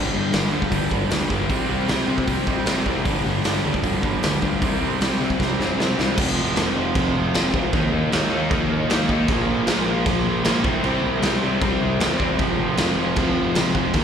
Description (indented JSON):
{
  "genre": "punk rock",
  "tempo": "154 BPM",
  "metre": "4/4",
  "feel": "straight",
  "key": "unclear",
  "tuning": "A4 = 439 Hz",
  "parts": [
    { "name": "crunchy overdriven guitar", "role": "riff", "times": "0.0-14.0 s", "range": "F2 to Eb4", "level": "-26 LUFS", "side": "left 11 dB", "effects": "none" },
    { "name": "distorted electric guitar", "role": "riff", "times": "0.0-14.0 s", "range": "F2 to Eb4", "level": "-25 LUFS", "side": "right 10 dB", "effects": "distortion, slapback echo" },
    { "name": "fuzz guitar", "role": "riff", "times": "0.0-6.2, 12.4-14.0 s", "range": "F2 to Eb4", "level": "-28 LUFS", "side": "equal", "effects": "distortion" },
    { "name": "fuzz picked electric bass", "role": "bass", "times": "0.0-14.0 s", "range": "F1 to C3", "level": "-26 LUFS", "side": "equal", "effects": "overdrive" },
    { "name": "raw garage drum kit", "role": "drums", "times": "0.3-14.0 s", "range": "crash cymbal, hi-hat, kick drum, snare drum", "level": "-23 LUFS", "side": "equal", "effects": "none" }
  ],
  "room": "small room ambience",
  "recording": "live gig heard through the venue's PA, club reverb",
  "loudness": "-18 LUFS",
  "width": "side -8 dB against mid",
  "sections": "0.0-6.2 A section; 6.2-14.0 B section",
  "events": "drum fill 5.4-6.2",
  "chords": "0.0 G5; 1.5 C5; 3.1 G5; 4.6 C5; 6.2 F5; 7.7 Eb5; 9.3 Bb5; 10.6 C5; 12.4 F5"
}